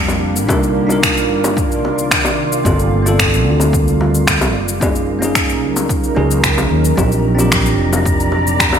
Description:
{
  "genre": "sunset chillout",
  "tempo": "111 BPM",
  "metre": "4/4",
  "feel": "straight",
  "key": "unclear",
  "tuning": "A4 = 441 Hz",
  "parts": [
    { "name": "bell-like tine electric piano", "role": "accompaniment", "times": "0.0-8.8 s", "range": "Bb3 to Bb4", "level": "-19 LUFS", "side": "right 1 dB", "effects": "auto-pan, digital delay" },
    { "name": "shimmering ambient pad", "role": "sustained chords", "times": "0.0-8.8 s", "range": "Bb2 to D5", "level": "-20 LUFS", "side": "right 1 dB", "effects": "chorus, built-in reverb" },
    { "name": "fretless electric bass", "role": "bass", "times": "0.0-8.8 s", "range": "F1 to Eb2", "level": "-18 LUFS", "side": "equal", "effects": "wide subtle chorus" },
    { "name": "electronic cabasa and finger snaps", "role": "drums", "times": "0.1-8.8 s", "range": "none", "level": "-18 LUFS", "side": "left 1 dB", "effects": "overdrive, gated reverb" },
    { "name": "bongos", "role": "percussion", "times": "0.1-8.8 s", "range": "none", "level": "-24 LUFS", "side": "left 2 dB", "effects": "none" },
    { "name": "electronic kick drum", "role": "drums", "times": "0.5-8.7 s", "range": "none", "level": "-21 LUFS", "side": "equal", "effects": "overdrive" },
    { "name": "wind-like tuned noise texture", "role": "texture", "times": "7.4-8.8 s", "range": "Bb5", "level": "-22 LUFS", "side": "left 1 dB", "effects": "built-in reverb" }
  ],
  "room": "moderate lush hall reverb, RT60 1.7 s",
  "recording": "bright 1980s-style digital production",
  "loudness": "-12 LUFS",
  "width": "side -8 dB against mid",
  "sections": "0.0-8.8 A section",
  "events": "none",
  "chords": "0.5 Cm11; 2.7 Gm11; 4.5 Gb6; 7.0 Bb6"
}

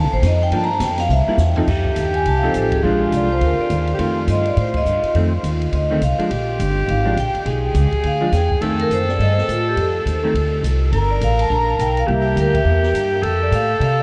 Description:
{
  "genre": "jazz, small-group swing and bop",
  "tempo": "208 BPM",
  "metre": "4/4",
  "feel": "swing 61% on 8ths",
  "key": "F mixolydian",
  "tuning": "A4 = 440 Hz",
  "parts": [
    { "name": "vibraphone with medium hard mallets", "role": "melody", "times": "0.0-14.0 s", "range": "F4 to Bb5", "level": "-25 LUFS", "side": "equal", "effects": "diffuse ambient delay" },
    { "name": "upright bass", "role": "bass", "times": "0.0-14.0 s", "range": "G1 to C3", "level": "-22 LUFS", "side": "equal", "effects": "none" },
    { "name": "open jazz drum kit", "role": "drums", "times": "0.2-13.9 s", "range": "crash cymbal, hi-hat, kick drum, ride cymbal, snare drum, toms", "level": "-32 LUFS", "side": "equal", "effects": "none" },
    { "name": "vintage hollow-body jazz guitar", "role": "accompaniment", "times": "0.5-12.5 s", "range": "Eb3 to A4", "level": "-28 LUFS", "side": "equal", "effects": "lush chorus" },
    { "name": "breathy alto saxophone", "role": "second line", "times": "1.7-14.0 s", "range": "F4 to Bb4", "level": "-24 LUFS", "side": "equal", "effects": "none" }
  ],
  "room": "moderate huge ambient reverb, RT60 7.2 s",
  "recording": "dreamy mix soaked in reverb, cassette tape",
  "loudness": "-18 LUFS",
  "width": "mono",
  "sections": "0.0-1.7 A section; 1.7-14.0 B section",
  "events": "vibraphone solo 0.0-1.7; drum fill 1.1-1.7; band accent 2.7, 4.7, 12.5",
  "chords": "0.0 F7; 0.5 Gm7; 1.1 C7; 1.7 F7; 2.8 Bb7; 4.0 F7; 6.3 Bb7(no3); 7.5 Bdim7; 8.6 F7; 10.9 Gm; 12.1 C7; 13.2 F"
}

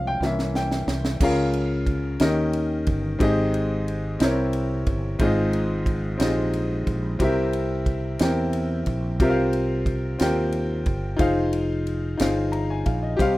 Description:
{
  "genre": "slow gospel",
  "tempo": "60 BPM (dotted quarters)",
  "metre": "6/8",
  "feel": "straight",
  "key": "F minor",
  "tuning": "A4 = 440 Hz",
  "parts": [
    { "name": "warm upright piano", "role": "accompaniment", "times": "0.0-13.4 s", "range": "Ab2 to Bb5", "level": "-23 LUFS", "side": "left 1 dB", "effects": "none" },
    { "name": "mellow fretless electric bass", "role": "bass", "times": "0.0-13.4 s", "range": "F1 to E2", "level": "-26 LUFS", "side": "right 1 dB", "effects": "lush chorus" },
    { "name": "tight funk drum kit", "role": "drums", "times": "0.2-13.4 s", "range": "crash cymbal, kick drum, ride cymbal, snare drum", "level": "-25 LUFS", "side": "right 1 dB", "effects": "none" }
  ],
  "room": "moderate studio reverb, RT60 0.6 s",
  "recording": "rough home demo mix",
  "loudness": "-21 LUFS",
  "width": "side -18 dB against mid",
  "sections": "0.0-1.2 A section; 1.2-13.4 B section",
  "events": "upright piano solo 0.0-1.2; drum fill 0.2-1.2",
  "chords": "0.2 C7b9; 1.2 Db6; 2.2 Eb7; 3.2 Abmaj7; 4.2 C7b9; 5.2 Fm7/Ab; 7.2 C7; 9.2 C7sus4; 11.2 Fm7"
}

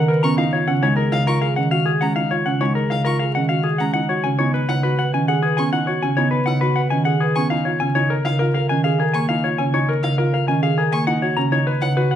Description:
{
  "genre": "classical, minimalist pattern music",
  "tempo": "101 BPM",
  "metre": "3/4",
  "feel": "straight",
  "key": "G# dorian",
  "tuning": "A4 = 439 Hz",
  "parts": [
    { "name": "semi-hollow electric guitar", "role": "melody", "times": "0.0-12.2 s", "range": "G#4 to A#5", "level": "-22 LUFS", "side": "left 5 dB", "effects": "none" },
    { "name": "dark grand piano", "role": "arpeggios", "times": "0.0-12.2 s", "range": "C#4 to B4", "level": "-24 LUFS", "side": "right 5 dB", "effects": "none" },
    { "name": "marimba with medium hard mallets", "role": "accompaniment", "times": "0.2-12.0 s", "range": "C#3 to B3", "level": "-20 LUFS", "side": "equal", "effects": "none" },
    { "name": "warm violin", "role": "arpeggios", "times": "0.2-11.9 s", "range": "E#5 to C#6", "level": "-31 LUFS", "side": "equal", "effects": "none" }
  ],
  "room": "wet large studio reverb, RT60 1.2 s",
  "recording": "vinyl crackle",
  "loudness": "-17 LUFS",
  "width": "side -10 dB against mid",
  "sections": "0.0-12.2 A section",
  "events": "none",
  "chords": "0.4 F#maj9; 3.9 G#m7; 7.5 A#m7; 11.1 B"
}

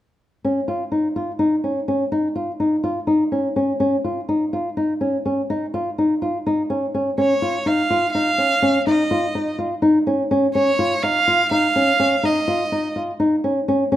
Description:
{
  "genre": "contemporary instrumental, contemporary",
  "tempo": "249 BPM (eighths)",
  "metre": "7/8",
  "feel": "straight",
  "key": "Db major",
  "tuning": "A4 = 437 Hz",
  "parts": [
    { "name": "flamenco guitar", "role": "arpeggios", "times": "0.4-14.0 s", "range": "Db4 to F4", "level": "-19 LUFS", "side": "left 1 dB", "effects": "none" },
    { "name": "rich violin", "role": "melody", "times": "7.2-13.0 s", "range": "Db5 to F5", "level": "-19 LUFS", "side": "right 2 dB", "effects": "none" }
  ],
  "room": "moderate recital hall reverb, RT60 1.5 s",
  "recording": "close, detailed microphones",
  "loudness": "-18 LUFS",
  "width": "side -12 dB against mid",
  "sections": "0.4-7.2 A section; 7.2-14.0 B section",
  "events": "none",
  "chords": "0.4 Dbadd9"
}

